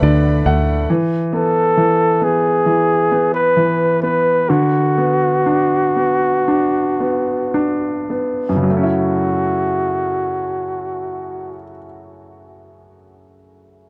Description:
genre	pop ballad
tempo	52-69 BPM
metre	4/4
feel	straight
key	F# minor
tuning	A4 = 443 Hz
part	breathy flugelhorn	melody	0.0-11.7 s	F#4 to B4	-19 LUFS	equal	tape echo
part	clear concert grand piano	accompaniment	0.0-13.9 s	F#2 to F#5	-20 LUFS	equal	none
part	warm studio string section	sustained chords	0.0-0.9 s	A3 to B5	-35 LUFS	equal	none
part	fingered electric bass	bass	0.0-0.9 s	D2	-18 LUFS	equal	none
room	light reverb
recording	dry, close 1970s-style studio recording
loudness	-17 LUFS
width	mono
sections	0.0-8.7 A section; 8.7-13.3 B section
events	grand piano fill 0.0-0.9; slowing down 0.9-8.7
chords	0.0 D6; 0.9 E; 4.5 Bm/D; 8.7 F#m7

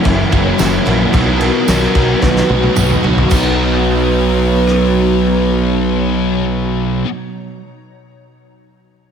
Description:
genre	rock, shoegaze and dream pop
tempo	110 BPM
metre	4/4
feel	straight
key	B major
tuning	A4 = 443 Hz
part	evolving wavetable pad	sustained chords	0.0-7.0 s	B2 to A#5	-26 LUFS	left 1 dB	ensemble chorus, built-in reverb
part	picked twelve-string acoustic guitar	arpeggios	0.0-7.1 s	E3 to F#4	-23 LUFS	left 3 dB	ensemble chorus, slapback echo
part	overdriven semi-hollow guitar	riff	0.0-7.1 s	B2 to F#4	-18 LUFS	right 11 dB	reverse reverb
part	thick fuzz guitar	riff	0.0-7.1 s	F#2 to B3	-18 LUFS	left 11 dB	distortion, ensemble chorus
part	fuzz picked electric bass	bass	0.1-7.0 s	F#1 to B1	-17 LUFS	equal	overdrive
part	loose indie drum kit	drums	0.1-4.8 s	crash cymbal, kick drum, rim click, snare drum, toms	-17 LUFS	equal	none
part	tambourine	percussion	0.6-3.6 s	none	-28 LUFS	right 12 dB	none
part	pure breathy sine lead	melody	1.4-7.0 s	A#4 to B4	-21 LUFS	right 1 dB	chorus, slapback echo
room	light reverb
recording	none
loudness	-11 LUFS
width	side -7 dB against mid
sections	0.0-3.3 A section; 3.3-7.7 B section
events	drum fill 2.2-3.3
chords	0.0 F#7; 1.1 Bmaj7

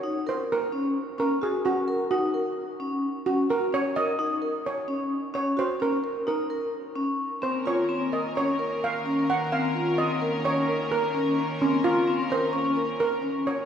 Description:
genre	contemporary instrumental, chamber music in an uneven meter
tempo	259 BPM (eighths)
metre	9/8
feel	straight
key	Eb dorian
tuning	A4 = 440 Hz
part	steel pan	melody	0.0-13.6 s	Db4 to Gb5	-28 LUFS	right 2 dB	none
part	vibraphone with medium mallets	arpeggios	0.0-13.5 s	C4 to Bb4	-27 LUFS	left 2 dB	none
part	warm studio string section	sustained chords	7.4-13.7 s	Eb3 to Bb4	-30 LUFS	left 1 dB	none
room	wet cathedral reverb, RT60 4.2 s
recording	recorded in a church or concert hall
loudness	-24 LUFS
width	side -8 dB against mid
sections	0.0-13.7 A section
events	none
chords	0.0 Eb7(no3) (rootless); 7.4 Bbm/Eb

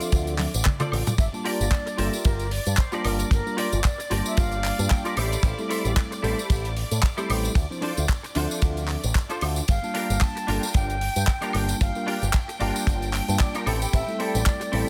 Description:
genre	nu-disco, nu disco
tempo	113 BPM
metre	4/4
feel	swing 56% on 16ths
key	G dorian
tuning	A4 = 440 Hz
part	mellow tine electric piano	accompaniment	0.0-14.9 s	F3 to A5	-34 LUFS	equal	sidechain pumping
part	bright studio string section	sustained chords	0.0-14.9 s	D5 to G5	-39 LUFS	equal	sidechain pumping
part	semi-hollow electric guitar	riff	0.0-14.9 s	C4 to G5	-34 LUFS	equal	ensemble chorus
part	tight funk drum kit	drums	0.0-14.8 s	handclaps, hi-hat, ride cymbal, tambourine, toms, woodblock	-33 LUFS	equal	none
part	picked electric bass with an envelope filter	bass	0.1-14.8 s	G1 to A2	-29 LUFS	equal	none
part	kick drum	drums	0.1-14.6 s	none	-24 LUFS	equal	none
part	mellow concert flute	melody	1.2-5.2, 9.7-14.9 s	Bb4 to A5	-35 LUFS	equal	dub echo
room	small room reverb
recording	none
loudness	-24 LUFS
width	mono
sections	0.0-14.9 A section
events	drum fill 0.4-1.2; clean electric guitar fill 4.4-5.4, 12.9-13.9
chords	0.0 Dm7; 1.2 Gm7; 5.2 Am7; 7.6 Dm7; 9.7 Gm7; 13.7 Am7

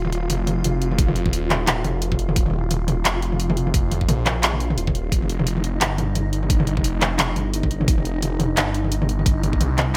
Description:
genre	half-time drum and bass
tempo	174 BPM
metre	4/4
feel	swing 58% on 16ths, half-time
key	unclear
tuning	A4 = 440 Hz
part	phased detuned saw bass	bass	0.0-10.0 s	Eb1 to C2	-25 LUFS	equal	phaser
part	flickering grainy texture	texture	0.0-10.0 s	Eb4 to F4	-32 LUFS	equal	built-in reverb
part	drum and bass drum kit	drums	0.1-9.9 s	handclaps, hi-hat, toms	-25 LUFS	equal	none
part	electronic kick drum	drums	1.0-9.6 s	none	-23 LUFS	equal	none
room	light reverb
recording	none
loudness	-21 LUFS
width	mono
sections	0.0-10.0 A section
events	none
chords	0.0 Eb5; 5.1 Fsus2

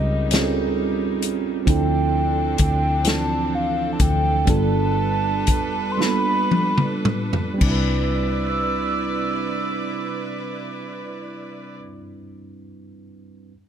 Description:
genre	slow six-eight R&B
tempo	35-44 BPM (dotted quarters)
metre	6/8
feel	straight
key	C major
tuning	A4 = 442 Hz
part	hollow clarinet-like synth lead	melody	0.0-11.8 s	Eb5 to E6	-25 LUFS	equal	chorus, slapback echo
part	tine electric piano	accompaniment	0.0-13.5 s	E3 to B4	-25 LUFS	right 4 dB	phaser
part	warm chamber string section	sustained chords	0.0-11.8 s	C3 to D5	-30 LUFS	equal	none
part	vintage muted fingered electric bass	bass	0.0-11.9 s	F1 to D2	-24 LUFS	left 1 dB	none
part	warm soul drum kit	drums	0.3-7.9 s	crash cymbal, hi-hat, kick drum, snare drum, toms	-22 LUFS	left 1 dB	none
room	light reverb, studio reverb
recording	none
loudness	-19 LUFS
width	side -9 dB against mid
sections	0.0-7.6 A section; 7.6-11.0 B section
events	slowing down 1.7-7.6; drum fill 6.0-7.6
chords	0.0 Eb13; 1.7 Dm9; 4.5 G7; 7.6 Cmaj9

